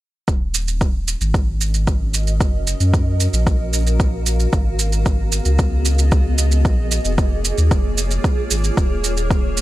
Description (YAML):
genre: piano and strings electronica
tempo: 113 BPM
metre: 4/4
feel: straight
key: Eb minor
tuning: A4 = 440 Hz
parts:
  - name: granular cloud pad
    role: sustained chords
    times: 1.7-9.6 s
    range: Bb3 to F5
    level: -26 LUFS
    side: equal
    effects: built-in reverb, sidechain pumping
  - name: warm sub bass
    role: bass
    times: 0.3-9.6 s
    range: Eb1 to Gb2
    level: -18 LUFS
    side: equal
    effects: sidechain pumping
  - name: electronic kick drum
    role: drums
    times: 0.3-9.4 s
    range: none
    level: -18 LUFS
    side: equal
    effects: overdrive
  - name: shaker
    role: drums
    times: 0.3-9.6 s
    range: none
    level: -24 LUFS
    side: right 6 dB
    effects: overdrive
room: little or no reverb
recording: none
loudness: -16 LUFS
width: side -16 dB against mid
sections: 0.3-9.6 A section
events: fade-in on ambient pad 0.3-9.6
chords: 0.3 Ebm7; 2.4 Gbmaj7; 4.5 Abm7; 6.7 Bbm7; 8.8 Eb7(no3)